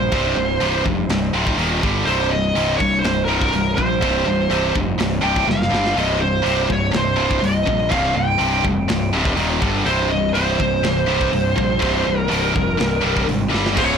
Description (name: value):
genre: heavy metal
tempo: 123 BPM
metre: 4/4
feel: straight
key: C phrygian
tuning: A4 = 441 Hz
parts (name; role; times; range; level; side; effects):
- high-gain lead guitar; melody; 0.0-14.0 s; Bb4 to G5; -21 LUFS; right 2 dB; distortion, tape echo
- heavy high-gain guitar; riff; 0.0-14.0 s; C2 to G3; -20 LUFS; left 1 dB; distortion
- fuzz picked electric bass; bass; 0.0-14.0 s; C1 to Bb1; -23 LUFS; equal; overdrive
- tight metal drum kit; drums; 0.1-13.9 s; crash cymbal, hi-hat, kick drum, snare drum; -26 LUFS; equal; soft clipping on kick
- scooped high-gain guitar; riff; 13.8-14.0 s; Db2 to F4; -24 LUFS; left 1 dB; distortion
room: light reverb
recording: blown-out, overdriven recording, overdrive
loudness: -16 LUFS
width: side -7 dB against mid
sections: 0.0-13.8 A section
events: drum fill 5.5-6.0, 13.5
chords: 0.0 C5; 1.6 Eb5; 1.8 G5; 2.1 C5; 5.7 G5; 6.0 Cm; 9.4 Eb5; 9.6 G5; 9.9 C5; 13.5 G5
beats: | 0.12 0.61 1.10 1.58 | 2.07 2.56 3.04 3.53 | 4.02 4.50 4.99 5.48 | 5.96 6.45 6.94 7.42 | 7.91 8.40 8.88 9.37 | 9.86 10.35 10.84 11.32 | 11.81 12.30 12.79 13.28 | 13.77